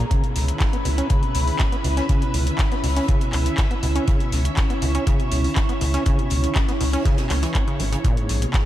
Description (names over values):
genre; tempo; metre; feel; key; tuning
acid house; 121 BPM; 4/4; straight; unclear; A4 = 440 Hz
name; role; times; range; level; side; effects
string machine, full ensemble; sustained chords; 0.0-8.7 s; Bb3 to Fb5; -30 LUFS; left 1 dB; ensemble chorus, sidechain pumping
deep acid bass; riff; 0.0-8.6 s; Ab2 to Db4; -27 LUFS; equal; ping-pong delay
round analog bass; bass; 0.0-8.5 s; Ab1 to Db2; -22 LUFS; equal; sidechain pumping
warbly tape-like pad; texture; 0.0-8.7 s; Fb4 to Db6; -29 LUFS; right 2 dB; chorus, built-in reverb, sidechain pumping
booming analog drum machine; drums; 0.1-8.6 s; handclaps, hi-hat; -30 LUFS; left 1 dB; none
electronic kick drum; drums; 0.1-8.6 s; none; -21 LUFS; equal; none
open jazz drum kit; drums; 0.1-8.7 s; hi-hat, snare drum; -38 LUFS; right 3 dB; high-pass filter on hats, high-pass filter on snare, high-pass filter on room
room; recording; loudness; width
light reverb, digital ambience; none; -18 LUFS; side -13 dB against mid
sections
0.0-8.7 A section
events
filter sweep on acid bass 0.0-8.7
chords
0.1 Dbm7; 8.0 Bbm7